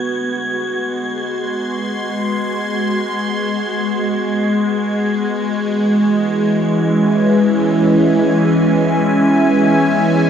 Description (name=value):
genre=ambient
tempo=free time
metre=none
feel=none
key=unclear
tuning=A4 = 440 Hz
part: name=evolving wavetable pad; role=sustained chords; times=1.0-10.3 s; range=E3 to B#5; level=-14 LUFS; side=equal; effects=phaser, built-in reverb
part: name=bowed-like drone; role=drone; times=0.0-10.3 s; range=B3 to F#4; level=-25 LUFS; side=right 1 dB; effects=built-in reverb
part: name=wind-like tuned noise texture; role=texture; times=0.0-10.3 s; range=G#6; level=-27 LUFS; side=right 1 dB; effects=built-in reverb
room=wet huge ambient reverb, RT60 7.7 s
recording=dark, warm production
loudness=-14 LUFS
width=side -8 dB against mid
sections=0.0-10.3 A section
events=none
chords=0.0 G#7#9; 5.3 C#m